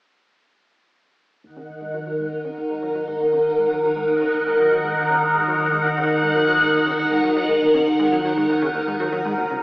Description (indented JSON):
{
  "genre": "ambient, sequencer-driven space music",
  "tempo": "119 BPM",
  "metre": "4/4",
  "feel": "straight",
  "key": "Eb minor",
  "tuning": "A4 = 437 Hz",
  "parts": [
    { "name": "phased string machine", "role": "sustained chords", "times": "1.4-9.6 s", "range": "Db3 to Gb5", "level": "-18 LUFS", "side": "equal", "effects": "ensemble chorus, phaser, cassette tape" },
    { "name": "plucky analog bass", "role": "riff", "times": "1.4-9.6 s", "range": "Db2 to Gb3", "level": "-32 LUFS", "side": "equal", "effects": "analog chorus, cassette tape, tape echo" },
    { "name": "analog drone", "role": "bass", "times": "2.9-9.6 s", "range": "Eb2", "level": "-56 LUFS", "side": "equal", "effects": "none" }
  ],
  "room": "wet studio reverb, RT60 0.6 s",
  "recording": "home recording on cassette, AM radio sound",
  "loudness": "-17 LUFS",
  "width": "side -22 dB against mid",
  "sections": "1.4-9.6 A section",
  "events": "fade-in on analog synth bass 1.4-9.6; filter sweep on string machine 1.4-9.6",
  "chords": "1.4 Ebm"
}